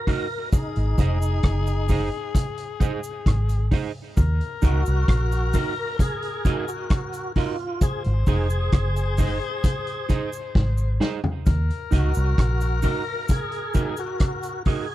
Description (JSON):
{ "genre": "roots reggae", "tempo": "66 BPM", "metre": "4/4", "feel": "straight", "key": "Eb dorian", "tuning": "A4 = 440 Hz", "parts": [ { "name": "tonewheel organ", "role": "melody", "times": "0.0-14.9 s", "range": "Eb4 to Bb4", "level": "-31 LUFS", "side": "equal", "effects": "chorus vibrato, slow rotary speaker, tape echo" }, { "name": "growling tenor saxophone", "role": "second line", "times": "0.0-14.6 s", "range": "Ab4 to C5", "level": "-33 LUFS", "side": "left 9 dB", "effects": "tape echo" }, { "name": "clean electric guitar", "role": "accompaniment", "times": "0.1-14.9 s", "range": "Eb4 to Eb5", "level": "-31 LUFS", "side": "right 8 dB", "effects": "tape echo" }, { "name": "vintage drum kit", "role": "drums", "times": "0.1-14.9 s", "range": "hi-hat, kick drum, rim click, snare drum, toms", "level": "-23 LUFS", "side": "equal", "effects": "none" }, { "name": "cabasa", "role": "percussion", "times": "0.5-14.6 s", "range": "none", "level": "-42 LUFS", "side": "right 7 dB", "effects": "none" }, { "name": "vintage muted fingered electric bass", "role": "bass", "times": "0.8-12.8 s", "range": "F1 to Eb2", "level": "-22 LUFS", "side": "equal", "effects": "none" } ], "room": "little or no reverb", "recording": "none", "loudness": "-21 LUFS", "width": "side -15 dB against mid", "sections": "0.0-14.9 A section", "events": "drum fill 10.6-11.5", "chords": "0.0 Ebm; 0.5 Ab; 4.2 Ebm; 7.8 Ab; 11.5 Ebm" }